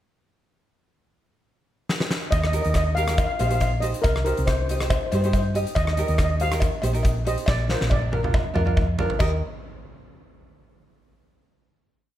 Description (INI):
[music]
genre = calypso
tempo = 140 BPM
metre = 4/4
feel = straight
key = Eb major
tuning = A4 = 439 Hz
[part]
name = huge arena drum kit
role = drums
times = 1.9-9.3 s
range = crash cymbal, hi-hat, kick drum, rim click, snare drum, toms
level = -25 LUFS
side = equal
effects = none
[part]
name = steel pan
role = melody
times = 2.3-9.4 s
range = Bb4 to F5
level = -27 LUFS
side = left 1 dB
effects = none
[part]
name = hollow-body short-scale fingered electric bass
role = bass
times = 2.3-9.4 s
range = Bb1 to G2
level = -24 LUFS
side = equal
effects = none
[part]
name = cowbell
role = percussion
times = 2.3-9.4 s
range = none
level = -32 LUFS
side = left 2 dB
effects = none
[part]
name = ukulele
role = accompaniment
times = 2.5-9.4 s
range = D4 to Eb5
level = -29 LUFS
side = right 2 dB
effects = none
[sound]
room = light reverb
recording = none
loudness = -20 LUFS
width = side -12 dB against mid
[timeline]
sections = 0.6-2.3 pickup bar; 2.3-9.2 verse; 9.2-10.9 final chord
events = drum fill 1.9-2.3, 7.5-9.2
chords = 0.6 N.C.; 2.3 Eb; 4.0 Cm; 5.8 Eb; 7.5 Bb; 9.2 Eb